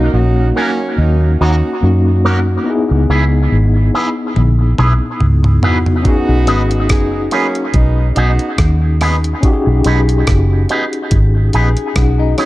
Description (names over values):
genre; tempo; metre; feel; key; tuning
lovers rock reggae; 71 BPM; 4/4; swing 55% on 16ths; B major; A4 = 440 Hz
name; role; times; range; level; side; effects
warm horn section; second line; 0.0-8.5 s; F#3 to G#4; -20 LUFS; right 2 dB; tape echo
overdriven tine electric piano; accompaniment; 0.0-12.5 s; A#3 to G#4; -18 LUFS; left 2 dB; fast tremolo, tape echo
vintage muted fingered electric bass; bass; 0.0-12.3 s; F#1 to F#2; -12 LUFS; equal; none
electric guitar with an envelope filter; stabs; 0.6-12.5 s; A#3 to B4; -21 LUFS; right 1 dB; phaser, tape echo
crisp 8-bit digital drum machine; drums; 4.4-12.5 s; hi-hat, kick drum, rim click, toms; -14 LUFS; equal; none
electric guitar through a small old amp; arpeggios; 11.5-12.5 s; C#4 to G#4; -22 LUFS; left 8 dB; tape echo
room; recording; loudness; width
little or no reverb; dark, warm production; -11 LUFS; side -17 dB against mid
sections
0.0-12.5 A section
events
drum fill 4.4-6.1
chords
0.0 D#m7; 2.7 C#m7; 6.1 B6